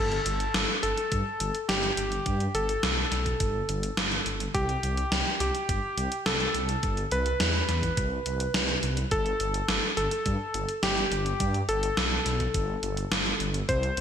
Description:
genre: synthwave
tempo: 105 BPM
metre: 4/4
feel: straight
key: unclear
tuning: A4 = 440 Hz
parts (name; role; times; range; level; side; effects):
- warm electric grand piano; melody; 0.0-14.0 s; G4 to C5; -30 LUFS; left 1 dB; ping-pong delay
- dark detuned saw bass; bass; 0.0-14.0 s; G1 to G2; -30 LUFS; equal; none
- gated 80s digital drum machine; drums; 0.1-14.0 s; hi-hat, snare drum; -29 LUFS; equal; gated reverb, gated reverb snare, studio reverb
- electronic kick drum; drums; 1.1-13.8 s; none; -31 LUFS; equal; studio reverb
room: moderate lush hall reverb, RT60 2.1 s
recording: bright 1980s-style digital production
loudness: -25 LUFS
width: side -8 dB against mid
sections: 0.0-14.0 A section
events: none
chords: 0.0 N.C.; 4.5 C5; 9.1 N.C.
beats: 0.55 1.12 1.69 | 2.26 2.83 3.40 3.97 | 4.54 5.12 5.69 6.26 | 6.83 7.40 7.97 8.54 | 9.12 9.69 10.26 10.83 | 11.40 11.97 12.54 13.12 | 13.69

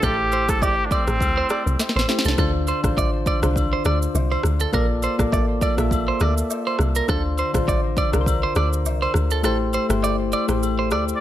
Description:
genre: afrobeats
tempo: 102 BPM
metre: 4/4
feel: swing 55% on 16ths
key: D minor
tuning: A4 = 440 Hz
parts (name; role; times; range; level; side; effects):
- breathy trumpet; melody; 0.0-2.1, 11.2 s; C4 to D5; -24 LUFS; equal; none
- soft electric-piano-like synth keys; accompaniment; 0.0-11.2 s; D3 to E5; -25 LUFS; left 2 dB; chorus
- clean electric guitar; riff; 0.0-11.0 s; A4 to D5; -26 LUFS; right 6 dB; tape echo
- woody log drum bass; bass; 0.0-11.1 s; G1 to D2; -23 LUFS; equal; none
- afro-pop drum kit; drums; 0.0-11.2 s; kick drum, rim click, shaker, snare drum; -24 LUFS; equal; none
- agogo bells and woodblock; percussion; 0.0-11.1 s; none; -32 LUFS; left 8 dB; none
room: light reverb, digital ambience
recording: none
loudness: -18 LUFS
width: side -12 dB against mid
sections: 0.0-2.4 A section; 2.4-11.2 B section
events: drum fill 1.8-2.4; kick muted 9.4-11.2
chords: 0.0 Am7; 2.4 Dm7; 4.7 Bbmaj7; 7.1 Dm7; 9.4 Am7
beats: | 0.03 0.62 1.21 1.79 | 2.38 2.97 3.56 4.15 | 4.74 5.32 5.91 6.50 | 7.09 7.68 8.27 8.85 | 9.44 10.03 10.62

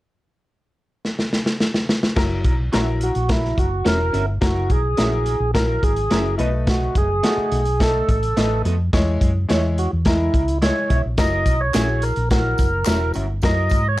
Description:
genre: uptempo 1960s-style soul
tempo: 106 BPM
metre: 4/4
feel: straight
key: F# mixolydian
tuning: A4 = 440 Hz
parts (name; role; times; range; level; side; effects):
- crunchy breakbeat drum kit; drums; 1.0-13.8 s; crash cymbal, hi-hat, kick drum, snare drum; -21 LUFS; equal; none
- bright upright piano; accompaniment; 2.2-13.8 s; F#3 to C#5; -26 LUFS; left 3 dB; none
- hollow-body short-scale fingered electric bass; bass; 2.2-14.0 s; E1 to G#2; -22 LUFS; equal; none
- electric guitar through a small old amp; stabs; 2.7-13.3 s; B3 to E5; -28 LUFS; right 3 dB; phaser
- tonewheel organ; melody; 3.0-14.0 s; E4 to D#5; -22 LUFS; right 2 dB; slow rotary speaker
- tambourine and handclaps; percussion; 11.2-13.8 s; none; -34 LUFS; left 3 dB; none
room: light reverb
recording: dark, warm production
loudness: -17 LUFS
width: side -16 dB against mid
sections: 0.0-2.2 A section; 2.2-14.0 B section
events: drum fill 1.0-2.2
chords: 0.0 N.C.; 2.2 F#7; 6.4 B7; 8.9 E6; 11.2 F#7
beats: 0.47 1.04 1.60 | 2.16 2.73 3.29 3.85 | 4.42 4.98 5.55 6.11 | 6.67 7.24 7.80 8.36 | 8.93 9.49 10.05 10.62 | 11.18 11.75 12.31 12.87 | 13.44 14.00

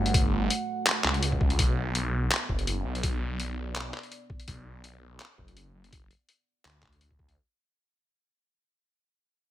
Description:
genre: half-time drum and bass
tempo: 166 BPM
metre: 4/4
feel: swing 53% on 16ths, half-time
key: unclear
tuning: A4 = 440 Hz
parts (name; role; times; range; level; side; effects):
- dark analog pad; sustained chords; 0.0-7.4 s; A3 to F#5; -36 LUFS; right 4 dB; chorus, sidechain pumping
- phased detuned saw bass; bass; 0.0-7.4 s; F#1 to D2; -30 LUFS; equal; phaser
- boom bap sampler-style drum kit; drums; 0.1-7.4 s; handclaps, hi-hat; -28 LUFS; left 1 dB; none
- electronic kick drum; drums; 0.1-7.3 s; none; -27 LUFS; equal; none
room: little or no reverb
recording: none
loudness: -25 LUFS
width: side -13 dB against mid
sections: 0.0-7.4 A section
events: fade-out 0.0-7.4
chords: 0.0 F#m; 1.6 Bm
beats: | 0.14 0.50 0.86 1.22 | 1.59 1.95 2.31 2.67 | 3.03 3.39 3.75 4.12 | 4.48 4.84 5.20 5.56 | 5.92 6.29 6.65 7.01

